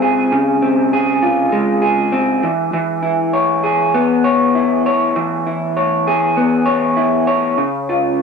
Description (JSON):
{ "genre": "indie pop", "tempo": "99 BPM", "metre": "4/4", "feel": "straight", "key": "unclear", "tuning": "A4 = 440 Hz", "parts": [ { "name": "electric guitar through a small old amp", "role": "solo", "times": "0.0-8.2 s", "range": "Db3 to C#5", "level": "-13 LUFS", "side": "equal", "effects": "lush chorus, warbly pitch drift" } ], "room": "light reverb", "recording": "dry, close 1970s-style studio recording", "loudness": "-13 LUFS", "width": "side -5 dB against mid", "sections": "0.0-8.2 A section", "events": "none", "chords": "0.0 Dbmaj7; 2.4 E6; 7.6 Db", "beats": "| 0.32 0.92 1.52 2.13 | 2.73 3.34 3.95 4.55 | 5.16 5.76 6.37 6.97 | 7.58 8.18" }